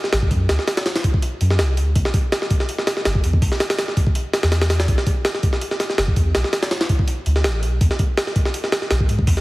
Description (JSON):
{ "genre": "drum and bass, jungle", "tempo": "164 BPM", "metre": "4/4", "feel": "swing 53% on 16ths", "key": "B phrygian", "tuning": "A4 = 440 Hz", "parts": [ { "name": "jungle sampler-style drum kit", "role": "drums", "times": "0.0-9.4 s", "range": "hi-hat, kick drum, snare drum", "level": "-18 LUFS", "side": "equal", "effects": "none" }, { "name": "soft dub sub bass", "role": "bass", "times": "0.1-9.4 s", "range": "F#1 to G#2", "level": "-18 LUFS", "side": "equal", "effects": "none" } ], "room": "little or no reverb", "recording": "heavily compressed radio sound, multiband compression, vinyl crackle", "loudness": "-17 LUFS", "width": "side -20 dB against mid", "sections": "0.0-9.4 A section", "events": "none", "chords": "none" }